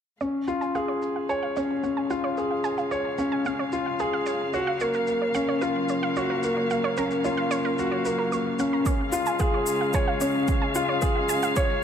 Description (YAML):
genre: piano and strings electronica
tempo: 111 BPM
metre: 4/4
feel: straight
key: Db major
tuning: A4 = 439 Hz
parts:
  - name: muted chamber string section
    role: sustained chords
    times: 0.2-11.8 s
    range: Db3 to F5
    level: -31 LUFS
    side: left 1 dB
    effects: sidechain pumping, low-pass filter
  - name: wide unison pluck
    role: arpeggios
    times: 0.2-11.6 s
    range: Bb4 to Db6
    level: -32 LUFS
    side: right 5 dB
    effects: vintage 12-bit sampler grit, sidechain pumping, ping-pong delay
  - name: warm concert grand piano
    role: riff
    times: 0.2-11.8 s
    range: Bb3 to Db5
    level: -25 LUFS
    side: left 1 dB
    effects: ping-pong delay
  - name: shaker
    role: drums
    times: 0.2-11.7 s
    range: none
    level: -39 LUFS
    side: left 3 dB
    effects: overdrive, high-pass filter on perc, low-pass filter on perc, high-pass filter on room, low-pass filter on room
  - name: electronic kick drum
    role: drums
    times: 8.9-11.7 s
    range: none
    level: -26 LUFS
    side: right 1 dB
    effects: overdrive
room: moderate concert hall reverb, RT60 2.4 s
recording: none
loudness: -23 LUFS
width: side -8 dB against mid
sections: 0.2-8.9 A section; 8.9-11.8 B section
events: fade-in on string section 0.2-8.9; filter sweep on synth arpeggio sound 0.2-8.9; build-up 8.9-11.8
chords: 0.2 Db; 4.5 Gbmaj7/Db; 8.9 Db